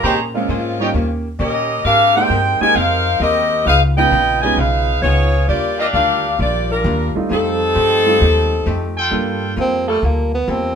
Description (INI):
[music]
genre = jazz, big band swing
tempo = 132 BPM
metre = 4/4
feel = swing 68% on 8ths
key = unclear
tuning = A4 = 440 Hz
[part]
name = warm saxophone section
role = melody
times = 0.0-8.9 s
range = Eb3 to Ab5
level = -15 LUFS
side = left 1 dB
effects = none
[part]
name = archtop guitar, miked and amplified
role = accompaniment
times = 0.0-10.8 s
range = Db3 to C5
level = -26 LUFS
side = left 3 dB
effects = none
[part]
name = clear trumpet section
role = stabs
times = 0.0-0.9, 5.8-9.5 s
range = D4 to Bb5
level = -21 LUFS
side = right 1 dB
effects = none
[part]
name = upright bass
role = bass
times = 0.0-10.8 s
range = Bb1 to Bb2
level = -20 LUFS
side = equal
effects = none
[part]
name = warm concert grand piano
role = accompaniment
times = 0.3-9.8 s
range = G3 to A4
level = -22 LUFS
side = right 4 dB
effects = none
[part]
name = warm tenor saxophone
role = melody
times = 9.6-10.8 s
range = A3 to C4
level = -18 LUFS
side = right 2 dB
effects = none
[part]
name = warm saxophone section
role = sustained chords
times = 9.9-10.0 s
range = G3 to A4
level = -23 LUFS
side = right 2 dB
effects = none
[sound]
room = moderate club reverb, RT60 0.7 s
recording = minimal, uncompressed stereo recording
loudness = -14 LUFS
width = side -7 dB against mid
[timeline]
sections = 0.0-9.1 A section; 9.1-10.8 B section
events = tenor saxophone solo 9.1-10.8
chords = 0.0 Bbm9; 0.9 Eb7; 1.9 Abmaj9; 3.7 Db9; 5.5 Ebmaj9; 7.3 F9; 9.1 Gm9